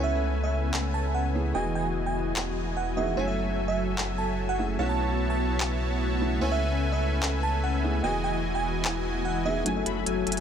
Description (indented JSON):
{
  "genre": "future bass",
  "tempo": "148 BPM",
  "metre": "4/4",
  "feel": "half-time",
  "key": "F# dorian",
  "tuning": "A4 = 440 Hz",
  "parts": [
    { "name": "bell-like FM electric piano", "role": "melody", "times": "0.0-9.7 s", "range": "C#5 to A5", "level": "-32 LUFS", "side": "right 3 dB", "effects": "chorus, tremolo, ping-pong delay" },
    { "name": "felt-muted upright piano", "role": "accompaniment", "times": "0.0-10.4 s", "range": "A3 to G#5", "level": "-35 LUFS", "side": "right 1 dB", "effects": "ping-pong delay" },
    { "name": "ethereal airy pad", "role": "sustained chords", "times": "0.0-10.4 s", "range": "C#3 to E4", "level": "-38 LUFS", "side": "right 1 dB", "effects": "ensemble chorus, built-in reverb" },
    { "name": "big bright polysynth", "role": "riff", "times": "0.0-10.4 s", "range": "E3 to B5", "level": "-30 LUFS", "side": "left 1 dB", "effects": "chorus" },
    { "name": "saturated sub bass", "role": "bass", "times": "0.0-10.4 s", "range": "E1 to C#2", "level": "-30 LUFS", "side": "equal", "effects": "none" },
    { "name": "trap drum kit", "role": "drums", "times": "0.7-10.4 s", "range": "handclaps, hi-hat", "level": "-34 LUFS", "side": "left 1 dB", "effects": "none" },
    { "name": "riser", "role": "sound effects", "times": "10.2-10.4 s", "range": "none", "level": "barely audible", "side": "none", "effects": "none" }
  ],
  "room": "light reverb",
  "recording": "none",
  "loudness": "-25 LUFS",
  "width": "side -8 dB against mid",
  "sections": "0.0-9.7 A section",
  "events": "filter sweep on analog polysynth 0.0-9.7",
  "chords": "0.0 Amaj9/C#; 1.5 Emaj7; 3.2 F#m7; 4.8 B9sus4; 6.4 Amaj9/C#; 8.0 Emaj7; 9.7 F#m7",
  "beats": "0.33 0.74 1.14 | 1.55 1.96 2.36 2.77 | 3.17 3.58 3.98 4.39 | 4.79 5.20 5.60 6.01 | 6.41 6.82 7.22 7.63 | 8.04 8.44 8.85 9.25 | 9.66 10.06"
}